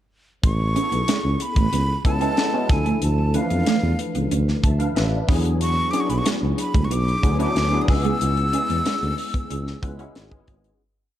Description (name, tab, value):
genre	polished 1980s jazz-funk pop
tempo	93 BPM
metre	4/4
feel	straight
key	A major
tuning	A4 = 439 Hz
part	breathy jazz flute	melody	0.4-10.2 s	F5 to E6	-26 LUFS	equal	ping-pong delay
part	dark tuba	bass	0.4-10.7 s	G#1 to F2	-22 LUFS	equal	none
part	tight funk drum kit	drums	0.4-10.8 s	hi-hat, kick drum, snare drum	-23 LUFS	equal	none
part	clean electric guitar	riff	0.6-10.6 s	G#3 to E4	-28 LUFS	right 6 dB	ensemble chorus
part	barky tine electric piano	accompaniment	0.8-10.8 s	E3 to A5	-27 LUFS	left 2 dB	overdrive, ensemble chorus
room	small room ambience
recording	dark, warm production, faint mains hum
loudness	-19 LUFS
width	side -12 dB against mid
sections	0.4-10.8 verse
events	fade-out 8.2-10.8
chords	0.4 Amaj9; 2.7 Dmadd9; 5.3 E9; 7.9 C#m7